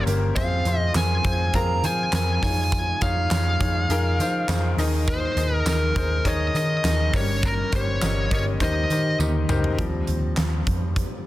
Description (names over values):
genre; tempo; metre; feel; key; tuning
piano-driven pop; 102 BPM; 4/4; straight; unclear; A4 = 440 Hz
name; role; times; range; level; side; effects
fuzz lead guitar; melody; 0.0-9.2 s; Bb4 to Bb5; -26 LUFS; equal; distortion
clear baby grand piano; accompaniment; 0.0-11.3 s; G2 to Eb5; -28 LUFS; left 3 dB; none
vintage muted picked electric bass; bass; 0.1-11.0 s; G1 to F3; -24 LUFS; equal; none
huge arena drum kit; drums; 0.1-11.1 s; handclaps, hi-hat, kick drum, snare drum, toms; -27 LUFS; equal; none
tambourine; percussion; 0.1-9.6 s; none; -40 LUFS; right 6 dB; none
room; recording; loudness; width
light reverb, small room ambience; dense, heavily limited modern master; -20 LUFS; side -15 dB against mid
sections
0.0-9.8 A section; 9.8-11.3 B section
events
drum fill 9.2-9.8; grand piano solo 9.8-11.3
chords
0.4 Fm; 2.4 Dbadd9/F; 4.8 Ebsus4; 7.1 Gdim; 8.6 Eb6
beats
| 0.37 0.95 1.54 2.13 | 2.72 3.31 3.90 4.49 | 5.08 5.67 6.25 6.84 | 7.43 8.02 8.61 9.20 | 9.79 10.38 10.96